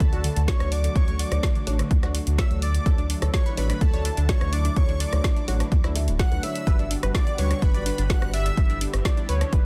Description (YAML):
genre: progressive house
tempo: 126 BPM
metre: 4/4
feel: straight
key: D major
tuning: A4 = 439 Hz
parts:
  - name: warm velvety synth lead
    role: melody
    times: 0.0-9.7 s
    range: A4 to F#5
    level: -36 LUFS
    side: equal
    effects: chorus, digital delay
  - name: soft supersaw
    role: second line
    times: 0.0-8.8 s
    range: A5 to F#6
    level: -41 LUFS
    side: equal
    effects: sidechain pumping, digital delay
  - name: lush unison pad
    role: sustained chords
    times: 0.0-9.7 s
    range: D3 to G4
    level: -38 LUFS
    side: equal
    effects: chorus, phaser, sidechain pumping
  - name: unison pluck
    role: arpeggios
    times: 0.0-9.6 s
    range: D3 to D5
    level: -38 LUFS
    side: equal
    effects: sidechain pumping, digital delay
  - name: round analog bass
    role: bass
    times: 0.0-9.7 s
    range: D1 to D2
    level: -27 LUFS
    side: equal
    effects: sidechain pumping
  - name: deep house drum kit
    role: drums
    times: 0.0-9.6 s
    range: hi-hat, rim click, snare drum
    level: -34 LUFS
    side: equal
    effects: sidechain pumping on hats, sidechain pumping on cymbals
  - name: electronic kick drum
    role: drums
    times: 0.0-9.6 s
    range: none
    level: -24 LUFS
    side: equal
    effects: none
  - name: felt-muted upright piano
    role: stabs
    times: 0.1-8.3 s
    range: G3 to E5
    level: -37 LUFS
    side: equal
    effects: vintage 12-bit sampler grit, sidechain pumping, digital delay
room: digital ambience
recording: dense, heavily limited modern master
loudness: -23 LUFS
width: mono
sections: 0.0-9.7 A section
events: none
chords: 0.0 Dmaj7; 6.7 Gmaj7